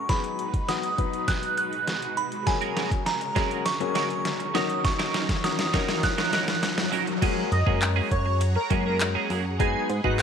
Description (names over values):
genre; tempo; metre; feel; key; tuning
dance-pop; 101 BPM; 4/4; straight; F# major; A4 = 440 Hz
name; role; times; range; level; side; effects
glassy synth bell; melody; 0.0-6.9 s; G#5 to F#6; -28 LUFS; right 3 dB; chorus, tape echo
filtered supersaw swell; sustained chords; 0.0-10.2 s; F#3 to B5; -37 LUFS; right 1 dB; phaser, sidechain pumping
riser; sound effects; 1.2-7.2 s; none; -34 LUFS; left 1 dB; none
clear baby grand piano; accompaniment; 0.1-10.2 s; D#3 to B4; -31 LUFS; left 11 dB; sidechain pumping
smooth R&B drum kit; drums; 0.1-10.2 s; crash cymbal, handclaps, hi-hat, kick drum, snare drum; -27 LUFS; equal; none
twelve-string electric guitar; riff; 2.5-10.2 s; F#3 to A#4; -31 LUFS; right 14 dB; analog chorus
airy dreamy lead; melody; 7.5-10.2 s; F#4 to D#5; -29 LUFS; right 1 dB; chorus, tape echo
chorused synth bass; bass; 7.5-10.2 s; F#2 to G#2; -26 LUFS; equal; sidechain pumping
room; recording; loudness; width
light reverb, digital ambience; 1960s-style stereo with parts hard left and right; -23 LUFS; side -7 dB against mid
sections
0.0-7.2 A section; 7.2-10.2 B section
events
build-up 0.0-7.2; drum fill 0.0-7.2; riser 1.2-7.2; drop 7.2-10.2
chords
0.1 G#m7; 2.5 F#add9; 4.5 D#m7; 7.2 F#add9; 9.6 G#m7